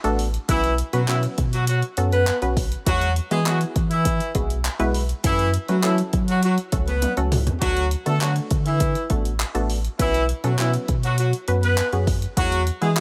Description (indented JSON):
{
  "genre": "dance-pop",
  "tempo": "101 BPM",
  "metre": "4/4",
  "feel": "straight",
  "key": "unclear",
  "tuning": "A4 = 439 Hz",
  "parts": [
    { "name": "wavetable chord stab", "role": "accompaniment", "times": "0.0-13.0 s", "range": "F#3 to B4", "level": "-29 LUFS", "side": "equal", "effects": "sidechain pumping" },
    { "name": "warm sub bass", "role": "bass", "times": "0.0-13.0 s", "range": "A1 to F#3", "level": "-25 LUFS", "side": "equal", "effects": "sidechain pumping" },
    { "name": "deep house drum kit", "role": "drums", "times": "0.0-13.0 s", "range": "handclaps, hi-hat, kick drum, toms", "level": "-27 LUFS", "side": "equal", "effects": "none" },
    { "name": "warm horn section", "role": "melody", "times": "0.5-13.0 s", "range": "E3 to B4", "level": "-27 LUFS", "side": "equal", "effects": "tape echo" }
  ],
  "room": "digital ambience",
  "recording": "none",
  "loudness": "-22 LUFS",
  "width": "mono",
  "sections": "0.0-13.0 A section",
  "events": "drum fill 7.0-7.6",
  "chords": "0.5 Bsus2; 2.9 Eadd9; 5.2 F#m; 7.6 D6; 10.0 Bsus2; 12.4 Eadd9",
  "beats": "| 0.49 1.08 1.68 2.27 | 2.86 3.46 4.05 4.65 | 5.24 5.83 6.43 7.02 | 7.62 8.21 8.80 9.40 | 9.99 10.59 11.18 11.78 | 12.37 12.96"
}